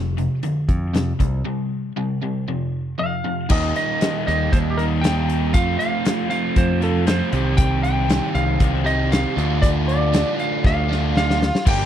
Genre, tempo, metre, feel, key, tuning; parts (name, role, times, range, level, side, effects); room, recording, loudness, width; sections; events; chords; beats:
classic rock; 118 BPM; 4/4; straight; A4 = 443 Hz
biting overdriven guitar; riff; 0.0-11.9 s; F2 to G4; -27 LUFS; left 13 dB; spring reverb
crunchy overdriven guitar; riff; 0.0-11.9 s; F2 to G4; -25 LUFS; right 10 dB; phaser
modern bright picked electric bass; bass; 0.0-11.9 s; F1 to F2; -21 LUFS; equal
big rock drum kit; drums; 0.2-11.8 s; crash cymbal, hi-hat, kick drum, snare drum; -21 LUFS; equal
lightly driven lead guitar; melody; 3.0-11.9 s; G4 to G5; -24 LUFS; equal; slapback echo
octave-fuzz lead guitar; second line; 11.2-11.9 s; F4 to G4; -28 LUFS; right 4 dB; distortion
little or no reverb; dry, close 1970s-style studio recording; -18 LUFS; side -10 dB against mid
0.0-3.5 A section; 3.5-11.7 B section
break 1.5-3.5; drum fill 10.6-11.7
0.0 F5; 1.5 C5; 2.5 F5; 3.5 Eb; 5.5 F; 7.3 Cm; 9.4 Dm
0.44 0.95 | 1.46 1.97 2.48 2.99 | 3.50 4.01 4.53 5.04 | 5.55 6.06 6.57 7.08 | 7.59 8.10 8.61 9.12 | 9.63 10.14 10.64 11.15 | 11.66